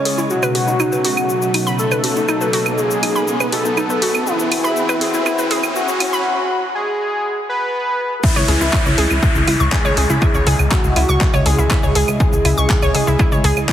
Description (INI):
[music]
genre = melodic techno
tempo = 121 BPM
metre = 4/4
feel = straight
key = C# minor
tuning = A4 = 440 Hz
[part]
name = fat analog lead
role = melody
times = 0.0-13.7 s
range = C#4 to B4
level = -20 LUFS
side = equal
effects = chorus, sidechain pumping, digital delay
[part]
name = warm analog pad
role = sustained chords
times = 0.0-13.7 s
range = B2 to D#5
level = -25 LUFS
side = equal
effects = chorus, sidechain pumping
[part]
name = swarming drone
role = drone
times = 0.0-13.7 s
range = C#3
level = -32 LUFS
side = right 2 dB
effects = none
[part]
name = riser and downlifter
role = sound effects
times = 0.0-12.2 s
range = none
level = -24 LUFS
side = equal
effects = none
[part]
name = warbly dusty pluck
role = arpeggios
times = 0.1-13.5 s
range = D#4 to C#6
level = -22 LUFS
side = equal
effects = chorus, sidechain pumping, tape echo
[part]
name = deep house drum kit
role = drums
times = 0.1-13.7 s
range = claves, crash cymbal, handclaps, hi-hat, shaker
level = -23 LUFS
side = equal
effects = small room ambience
[part]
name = electronic kick drum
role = drums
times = 8.2-13.7 s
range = none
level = -17 LUFS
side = equal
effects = overdrive, small room ambience
[part]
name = plucky analog bass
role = bass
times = 8.4-13.6 s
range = C#2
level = -18 LUFS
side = equal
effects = sidechain pumping
[sound]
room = moderate huge ambient reverb, RT60 3.6 s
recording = heavily compressed radio sound, high-pass filter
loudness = -14 LUFS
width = side -10 dB against mid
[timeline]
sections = 0.0-8.2 A section; 8.2-13.7 B section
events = build-up 0.0-8.2; riser 0.0-6.3; break 6.3-8.2; drop 8.2-13.7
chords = 0.3 B; 4.3 E; 8.2 C#m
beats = | 0.30 0.80 1.29 1.79 | 2.29 2.78 3.28 3.77 | 4.27 4.76 5.26 5.76 | 6.25 6.75 7.24 7.74 | 8.23 8.73 9.23 9.72 | 10.22 10.71 11.21 11.71 | 12.20 12.70 13.19 13.69